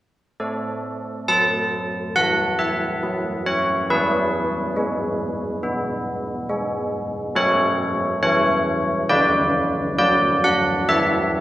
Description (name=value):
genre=classical, tune for church bells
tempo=69 BPM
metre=4/4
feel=straight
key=A major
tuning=A4 = 439 Hz
part: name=old church bells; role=solo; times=0.4-11.4 s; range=D3 to A5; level=-18 LUFS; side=equal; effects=none
room=moderate scoring stage reverb, RT60 1.8 s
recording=none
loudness=-18 LUFS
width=side -15 dB against mid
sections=0.4-11.4 A section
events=none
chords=0.4 A5; 3.9 E; 7.4 F#m; 9.1 Bm/D; 10.9 A5/E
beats=| 0.39 1.28 2.16 3.03 | 3.89 4.76 5.63 6.50 | 7.37 8.23 9.11 9.99 | 10.89